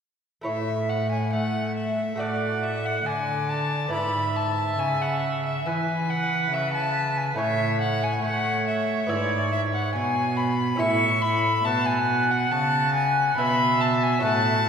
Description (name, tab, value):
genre	classical, baroque-style sonata movement with continuo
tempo	70 BPM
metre	4/4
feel	straight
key	A major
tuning	A4 = 439 Hz
part	lute	accompaniment	0.4-14.7 s	G#2 to E5	-32 LUFS	equal	none
part	rich violin	melody	0.5-14.7 s	D5 to C#6	-25 LUFS	left 3 dB	none
part	rich cello	bass	0.5-14.7 s	G#2 to A3	-27 LUFS	right 1 dB	none
part	warm oboe	second line	2.2-14.7 s	B4 to F#5	-28 LUFS	right 4 dB	none
room	wet church reverb, RT60 2.8 s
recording	recorded in a church or concert hall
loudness	-22 LUFS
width	side -7 dB against mid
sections	0.5-14.7 A section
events	none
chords	0.5 A; 2.2 D/A; 3.9 E7/G#; 7.4 A; 9.1 E/G#; 10.8 A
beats	| 0.46 1.33 2.20 3.06 | 3.93 4.79 5.66 6.52 | 7.38 8.24 9.10 9.95 | 10.80 11.66 12.52 13.38 | 14.23